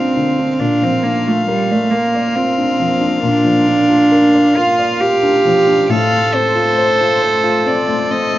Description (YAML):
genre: neoclassical piano and strings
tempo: 68 BPM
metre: 3/4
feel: rubato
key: unclear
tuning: A4 = 440 Hz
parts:
  - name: rich violin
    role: melody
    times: 0.0-8.4 s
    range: C5 to F5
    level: -19 LUFS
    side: left 3 dB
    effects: none
  - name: warm cello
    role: second line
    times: 0.0-8.4 s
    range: G3 to A4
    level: -14 LUFS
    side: right 2 dB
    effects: none
  - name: felt-muted upright piano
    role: accompaniment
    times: 0.0-8.4 s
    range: G2 to D5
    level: -19 LUFS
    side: left 3 dB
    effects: none
  - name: warm chamber string section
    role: sustained chords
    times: 0.0-8.4 s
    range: A3 to C5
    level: -27 LUFS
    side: left 1 dB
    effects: none
room: light reverb, small room ambience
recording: rough home demo mix, nothing above 7.4 kHz, faint mains hum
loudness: -12 LUFS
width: side -14 dB against mid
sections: 0.0-8.4 A section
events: none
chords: 0.0 Gm7; 0.6 Bb; 5.9 F/A